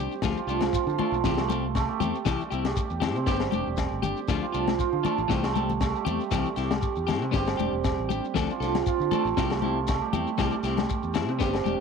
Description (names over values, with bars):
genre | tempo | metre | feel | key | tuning
highlife guitar band | 118 BPM | 4/4 | swing 54% on 16ths | C major | A4 = 441 Hz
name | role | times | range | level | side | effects
clean electric guitar | accompaniment | 0.0-11.8 s | E3 to A4 | -31 LUFS | left 12 dB | vibrato effect
cimbalom | arpeggios | 0.0-11.8 s | F3 to G4 | -28 LUFS | right 12 dB | tape echo
fingered electric bass | bass | 0.0-11.8 s | E1 to D3 | -32 LUFS | equal | none
shekere | percussion | 0.1-11.8 s | none | -36 LUFS | left 4 dB | none
crunchy breakbeat drum kit | drums | 0.2-11.7 s | kick drum, snare drum | -31 LUFS | left 3 dB | none
agogo bells | percussion | 0.2-11.7 s | none | -38 LUFS | left 11 dB | none
congas | percussion | 0.6-11.8 s | none | -32 LUFS | left 11 dB | none
room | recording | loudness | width
light reverb, studio reverb | 1960s-style stereo with parts hard left and right | -24 LUFS | side -6 dB against mid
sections
0.0-11.8 A section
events
none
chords
0.2 Dm; 1.2 Am7/C; 3.3 G; 4.3 Dm; 5.3 Am7/C; 7.3 G; 8.3 Dm; 9.4 Am7/C